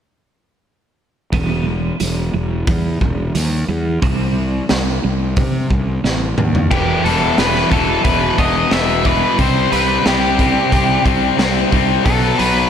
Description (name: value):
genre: quiet-loud alternative rock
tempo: 90 BPM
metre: 4/4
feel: straight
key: E harmonic minor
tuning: A4 = 440 Hz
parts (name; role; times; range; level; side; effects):
- clean electric guitar; arpeggios; 1.3-12.7 s; B2 to E4; -22 LUFS; right 4 dB; tremolo
- fuzz fingered electric bass; bass; 1.3-12.6 s; E1 to C3; -20 LUFS; equal; overdrive
- raw garage drum kit; drums; 1.3-12.5 s; crash cymbal, hi-hat, kick drum, snare drum, toms; -19 LUFS; equal; none
- octave-fuzz lead guitar; melody; 6.7-12.7 s; G4 to E5; -18 LUFS; right 1 dB; distortion, slapback echo, digital delay
- tight distorted guitar; riff; 6.7-12.7 s; E2 to C4; -17 LUFS; left 9 dB; distortion, slapback echo
room: moderate lush hall reverb, RT60 3.1 s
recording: big arena sound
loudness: -14 LUFS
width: side -8 dB against mid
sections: 1.3-6.7 A section; 6.7-12.7 B section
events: drum fill 6.0-6.7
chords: 1.3 Em; 4.0 C5; 6.7 Em; 9.4 Cm; 12.1 B5